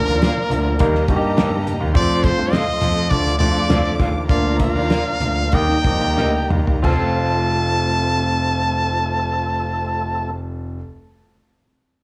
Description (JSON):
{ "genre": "uptempo 1960s-style soul", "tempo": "89-104 BPM", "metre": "4/4", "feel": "straight", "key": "F mixolydian", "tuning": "A4 = 438 Hz", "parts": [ { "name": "brilliant trumpet", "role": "melody", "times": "0.0-10.3 s", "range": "Bb4 to A5", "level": "-24 LUFS", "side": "equal", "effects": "plate reverb" }, { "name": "dark studio violin section", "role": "second line", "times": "0.0-10.3 s", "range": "F4 to D6", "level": "-32 LUFS", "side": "equal", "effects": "plate reverb" }, { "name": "barky tine electric piano", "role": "accompaniment", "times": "0.0-10.8 s", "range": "F3 to F5", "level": "-26 LUFS", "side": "equal", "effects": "overdrive, plate reverb" }, { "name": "percussive tonewheel organ", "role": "sustained chords", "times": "0.0-10.3 s", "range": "F3 to A4", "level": "-32 LUFS", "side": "equal", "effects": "none" }, { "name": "clear concert grand piano", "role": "bass", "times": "0.1-10.8 s", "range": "F1 to Eb3", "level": "-24 LUFS", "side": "equal", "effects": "none" }, { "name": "electric guitar through a small old amp", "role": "stabs", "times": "0.2-10.9 s", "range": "Eb4 to F5", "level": "-31 LUFS", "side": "equal", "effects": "plate reverb" }, { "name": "cloth-damped thuddy drum kit", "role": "drums", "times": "0.2-7.0 s", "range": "crash cymbal, hi-hat, kick drum, snare drum, toms", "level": "-22 LUFS", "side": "equal", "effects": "none" }, { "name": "congas", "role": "percussion", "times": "0.2-7.2 s", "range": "none", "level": "-34 LUFS", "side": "equal", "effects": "none" } ], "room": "light reverb", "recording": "small room ambience", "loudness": "-19 LUFS", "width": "mono", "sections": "0.0-6.8 A section; 6.8-9.5 B section", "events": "slowing down 1.9-6.8; drum fill 6.2-6.8", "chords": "0.0 Bb; 0.8 Eb; 1.9 F; 3.1 Dm; 4.3 Bb/D; 5.5 Eb; 6.8 F" }